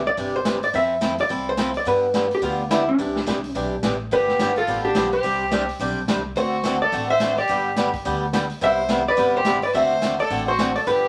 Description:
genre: country, western swing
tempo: 213 BPM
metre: 4/4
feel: swing 61% on 8ths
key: C major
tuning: A4 = 440 Hz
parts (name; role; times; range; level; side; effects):
- vintage hollow-body jazz guitar; melody; 0.0-11.1 s; D4 to E5; -24 LUFS; equal; none
- upright bass; bass; 0.0-11.1 s; G1 to G2; -35 LUFS; equal; none
- picked swing-style acoustic guitar; accompaniment; 0.2-11.1 s; C3 to A4; -27 LUFS; equal; none
- swinging big-band drum kit; drums; 0.2-10.9 s; hi-hat, kick drum, snare drum; -30 LUFS; equal; none
- clear fiddle; second line; 4.1-11.1 s; D4 to C5; -27 LUFS; equal; none
room: moderate studio reverb, RT60 0.5 s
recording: vinyl crackle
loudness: -21 LUFS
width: mono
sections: 0.0-11.1 A section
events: none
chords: 0.0 Cadd9; 0.7 Fmaj7; 1.9 G7; 3.0 Cadd9; 4.1 G7; 5.2 Csus2; 6.4 D7; 7.5 G; 8.6 Cmaj7; 9.7 D7

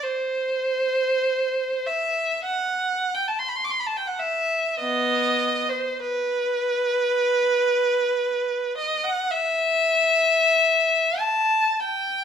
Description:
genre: classical, free, expressive piece for unaccompanied violin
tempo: 43-55 BPM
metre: 4/4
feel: rubato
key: E minor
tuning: A4 = 439 Hz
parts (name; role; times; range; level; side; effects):
- rich violin; solo; 0.0-12.2 s; B3 to D6; -20 LUFS; equal; none
room: moderate recital hall reverb, RT60 1.4 s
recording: minimal, uncompressed stereo recording, faint mains hum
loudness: -20 LUFS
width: side -8 dB against mid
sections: 0.0-12.2 A section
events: none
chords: none

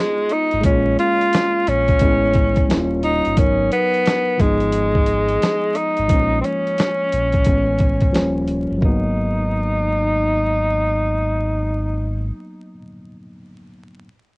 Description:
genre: lo-fi hip hop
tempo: 88 BPM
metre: 4/4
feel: swing 63% on 16ths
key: G# dorian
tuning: A4 = 439 Hz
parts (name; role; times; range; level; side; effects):
- breathy tenor saxophone; melody; 0.0-12.3 s; G#3 to E#4; -19 LUFS; equal; low-pass filter, cassette tape
- tine electric piano; accompaniment; 0.0-14.1 s; E3 to A#4; -23 LUFS; equal; low-pass filter, cassette tape
- dusty soul sampler-style drum kit; drums; 0.3-9.0 s; hi-hat, kick drum, snare drum; -18 LUFS; equal; none
- sub bass with octave; bass; 0.5-12.3 s; D#1 to A#1; -23 LUFS; equal; tube saturation
room: light reverb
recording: home recording on cassette, vinyl crackle, nothing above 10.5 kHz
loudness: -16 LUFS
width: side -27 dB against mid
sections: 0.0-8.8 A section; 8.8-11.6 B section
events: none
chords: 0.0 G#m6; 0.6 A#m7; 2.0 Amaj9; 2.7 D#7; 3.4 G#m7; 4.4 G#m6; 6.1 A#m11; 7.5 Amaj9; 8.1 D#7; 8.8 G#m7

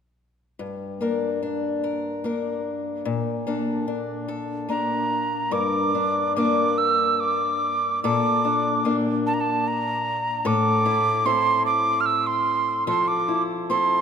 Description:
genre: celtic folk, Celtic slow air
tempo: 73 BPM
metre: 3/4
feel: rubato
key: G dorian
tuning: A4 = 441 Hz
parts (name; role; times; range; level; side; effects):
- picked old ladder-braced acoustic guitar; accompaniment; 0.6-14.0 s; G2 to Bb4; -25 LUFS; left 3 dB; none
- breathy mellow mid whistle; melody; 4.7-14.0 s; A5 to F6; -22 LUFS; right 3 dB; none
room: wet cathedral reverb, RT60 4.1 s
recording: minimal, uncompressed stereo recording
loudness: -21 LUFS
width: side -7 dB against mid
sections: 0.6-5.5 A section; 5.5-14.0 B section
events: none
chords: 0.6 Gm; 3.1 Bbmaj7; 5.5 Gm; 8.0 Bbmaj7; 10.5 Am; 12.9 Fmaj7

